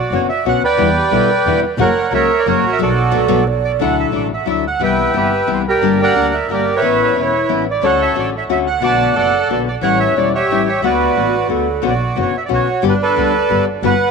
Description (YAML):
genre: tango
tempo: 179 BPM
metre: 3/4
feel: rubato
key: B minor, D major from 3.8 s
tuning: A4 = 435 Hz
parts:
  - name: bandoneon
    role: melody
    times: 0.0-14.1 s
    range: D4 to A5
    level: -15 LUFS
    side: right 4 dB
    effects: tape echo
  - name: nylon-string guitar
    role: accompaniment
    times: 0.1-13.9 s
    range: B2 to G4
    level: -18 LUFS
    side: left 13 dB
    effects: none
  - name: warm double bass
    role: bass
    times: 0.1-14.0 s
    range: E1 to E2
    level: -23 LUFS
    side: right 2 dB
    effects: none
  - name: mellow hollow concert flute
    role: second line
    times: 1.0-3.8, 11.2-11.8 s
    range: F#4 to D5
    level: -22 LUFS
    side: right 12 dB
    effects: none
room: wet spring reverb, RT60 1.4 s, small room ambience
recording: 1960s-style stereo with parts hard left and right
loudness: -13 LUFS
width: side -5 dB against mid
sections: 0.0-3.8 A section; 3.8-11.8 B section; 11.8-14.1 A section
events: band accent 2.8-3.8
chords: 0.0 Bmadd9; 0.8 Em7; 1.8 F#; 2.8 Bm7; 3.8 Dadd9; 4.8 Cmaj7; 5.8 Gm; 6.8 Aadd9; 7.8 Dmaj7; 8.8 Bm7; 9.8 A7; 10.8 D6; 11.8 Bmadd9; 12.8 Gadd9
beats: 0.12 0.46 | 0.79 1.13 1.46 | 1.80 2.13 2.47 | 2.80 3.13 3.47 | 3.81 4.14 4.48 | 4.81 5.15 5.48 | 5.82 6.15 6.48 | 6.82 7.15 7.49 | 7.82 8.16 8.49 | 8.82 9.16 9.49 | 9.83 10.16 10.49 | 10.83 11.16 11.50 | 11.84 12.17 12.51 | 12.84 13.17 13.51 | 13.84